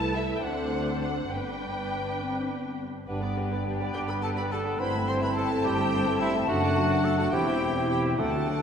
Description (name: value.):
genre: quick classical-period movement for symphony orchestra.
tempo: 69 BPM (dotted quarters).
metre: 6/8.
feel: rubato.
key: G major.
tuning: A4 = 440 Hz.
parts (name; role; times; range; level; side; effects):
warm studio violin section; melody; 0.0-8.6 s; B4 to A5; -37 LUFS; left 4 dB; none.
clear studio violin section; second line; 0.0-8.6 s; A4 to C6; -36 LUFS; left 1 dB; none.
warm studio viola section; accompaniment; 0.0-8.6 s; F#3 to C5; -34 LUFS; equal; none.
dark French horn section; sustained chords; 0.0-8.6 s; A3 to F#4; -33 LUFS; left 3 dB; none.
dark studio double bass section; bass; 0.0-8.6 s; E1 to D2; -35 LUFS; right 3 dB; none.
warm studio cello section; bass; 0.0-8.6 s; C2 to G2; -34 LUFS; right 1 dB; none.
large flute ensemble; second line; 3.1-8.6 s; G5 to A5; -34 LUFS; left 3 dB; none.
warm clarinet; second line; 3.1-8.6 s; D4 to E4; -33 LUFS; left 2 dB; none.
warm bassoon; accompaniment; 3.1-8.6 s; A3 to C4; -34 LUFS; right 2 dB; none.
mellow cor anglais; second line; 4.0-8.6 s; E4 to C5; -31 LUFS; right 2 dB; none.
timpani; percussion; 8.2-8.6 s; D3; -36 LUFS; left 2 dB; none.
room: wet scoring stage reverb, RT60 2.0 s.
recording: none.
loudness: -25 LUFS.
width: side -7 dB against mid.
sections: 0.0-3.1 A section; 3.1-8.6 B section.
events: none.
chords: 0.4 D7; 1.3 G; 4.8 Am7/G; 6.5 D/F#; 7.3 C/E.